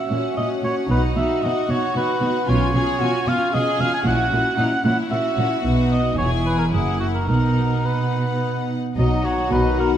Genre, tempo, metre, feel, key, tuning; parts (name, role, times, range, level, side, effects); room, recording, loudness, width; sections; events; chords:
quick classical-period movement for symphony orchestra; 112 BPM; 3/4; straight; B major; A4 = 440 Hz
rich studio violin section; melody; 0.0-10.0 s; D#5 to G#5; -32 LUFS; left 8 dB
mellow cor anglais; second line; 0.0-9.9 s; F#4 to G#5; -24 LUFS; right 1 dB
warm studio viola section; accompaniment; 0.0-10.0 s; F#3 to F#4; -26 LUFS; equal
clear studio violin section; second line; 0.1-10.0 s; C#4 to G#4; -29 LUFS; left 4 dB
dark chamber cello section; bass; 0.1-10.0 s; E2 to B2; -23 LUFS; right 2 dB
dark studio double bass section; bass; 0.9-10.0 s; E1 to B1; -24 LUFS; right 1 dB
concert flute; second line; 9.0-10.0 s; F#5 to B5; -29 LUFS; left 2 dB
mellow clarinet; second line; 9.0-10.0 s; D#4; -29 LUFS; left 5 dB
mellow bassoon; accompaniment; 9.0-10.0 s; F#3; -27 LUFS; equal
mellow French horn section; sustained chords; 9.0-10.0 s; D#3 to F#4; -24 LUFS; left 7 dB
moderate scoring stage reverb, RT60 1.6 s; dark, warm production; -18 LUFS; side -10 dB against mid
0.0-9.0 A section
0.0 F#7/A#; 0.9 B; 2.5 C#7/B; 4.1 F#7/A#; 5.7 B; 6.2 E; 6.7 F#7; 7.3 B